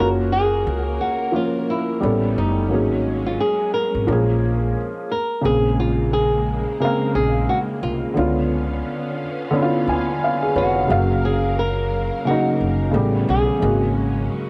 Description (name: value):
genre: lo-fi hip hop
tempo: 88 BPM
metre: 4/4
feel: swing 60% on 16ths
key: Bb minor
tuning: A4 = 440 Hz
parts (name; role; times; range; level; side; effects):
- flamenco guitar; melody; 0.0-14.5 s; Eb4 to Bb4; -26 LUFS; equal; low-pass filter, cassette tape
- felt-muted upright piano; accompaniment; 0.0-14.5 s; Db3 to Ab5; -24 LUFS; equal; cassette tape, low-pass filter
- string machine, violas; sustained chords; 0.0-14.5 s; Db3 to F5; -33 LUFS; equal; ensemble chorus, low-pass filter, cassette tape
- upright bass; bass; 0.0-14.3 s; F1 to D2; -26 LUFS; equal; none
room: moderate small room reverb, RT60 0.6 s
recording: home recording on cassette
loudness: -20 LUFS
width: mono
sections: 0.0-5.4 A section; 5.4-14.5 B section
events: stop 4.8-5.4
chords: 0.0 Gbmaj7; 2.0 A9; 2.7 Ab9sus4; 4.1 Bbm7; 5.4 Bbm9; 8.2 Db7b9; 10.9 Gbmaj7; 12.9 A9; 13.6 Ab9sus4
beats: 0.66 1.34 2.03 | 2.71 3.39 4.07 4.75 | 5.44 6.12 6.80 7.48 | 8.16 8.85 9.53 10.21 | 10.89 11.57 12.25 12.94 | 13.62 14.30